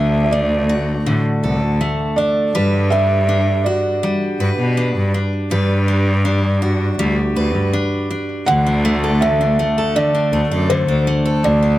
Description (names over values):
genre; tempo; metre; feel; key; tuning
folktronica; 81 BPM; 4/4; straight; D major; A4 = 441 Hz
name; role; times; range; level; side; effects
felt-muted upright piano; melody; 0.0-11.8 s; C5 to F#5; -20 LUFS; right 1 dB; tape echo
picked steel-string acoustic guitar; arpeggios; 0.0-11.8 s; D3 to B4; -19 LUFS; left 1 dB; tape echo
rich cello; bass; 0.0-11.8 s; C2 to B2; -18 LUFS; equal; tube saturation
room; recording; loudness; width
light reverb, small room ambience; none; -15 LUFS; side -15 dB against mid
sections
0.0-8.5 A section; 8.5-11.8 B section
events
none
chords
0.0 D; 2.6 Gmaj7; 8.5 D